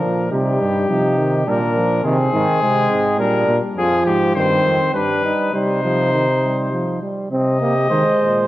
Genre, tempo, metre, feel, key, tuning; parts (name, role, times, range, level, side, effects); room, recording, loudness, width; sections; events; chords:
classical, imitative canzona for brass ensemble; 103 BPM; 3/4; straight; Ab major, C minor from 3.8 s; A4 = 441 Hz
warm trumpet; melody; 0.0-8.4 s; G4 to Eb5; -20 LUFS; left 3 dB
mellow flugelhorn; second line; 0.0-8.5 s; C4 to C5; -22 LUFS; right 2 dB
warm trombone; accompaniment; 0.0-8.5 s; Eb3 to C4; -21 LUFS; right 1 dB
mellow euphonium; bass; 0.0-8.5 s; F2 to Eb3; -22 LUFS; right 1 dB
moderate scoring stage reverb, RT60 1.7 s; worn, warbling old tape, cassette tape, warbly pitch drift; -15 LUFS; side -15 dB against mid
0.0-7.3 A section; 7.3-8.5 B section
0.3 Cm; 1.5 Bb; 2.0 Ab; 3.2 Gm/Bb; 3.8 Fmadd9; 4.4 Cm/G; 5.0 G; 5.5 Cm